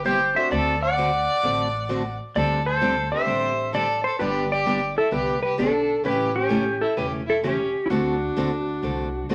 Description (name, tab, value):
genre	country, western swing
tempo	130 BPM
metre	4/4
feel	swing 67% on 8ths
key	unclear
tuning	A4 = 440 Hz
part	clean lap steel guitar	melody	0.0-9.3 s	E4 to F#5	-27 LUFS	equal	none
part	picked steel-string acoustic guitar	accompaniment	0.0-9.3 s	C3 to A4	-30 LUFS	equal	none
part	upright bass	bass	0.0-9.3 s	E1 to D2	-34 LUFS	equal	none
part	clear fiddle	second line	0.1-9.3 s	C#4 to D5	-29 LUFS	equal	none
part	bright upright piano	accompaniment	0.3-6.3 s	G3 to G4	-34 LUFS	equal	none
room	moderate studio reverb, RT60 0.7 s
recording	none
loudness	-23 LUFS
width	mono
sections	0.0-9.3 A section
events	none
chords	0.0 Cmaj7; 0.5 D7; 2.4 D7sus4; 4.2 G; 6.1 A7; 7.9 D7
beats	0.05 | 0.51 0.97 1.43 1.89 | 2.35 2.82 3.28 3.74 | 4.20 4.67 5.13 5.59 | 6.05 6.52 6.98 7.45 | 7.91 8.37 8.84 9.30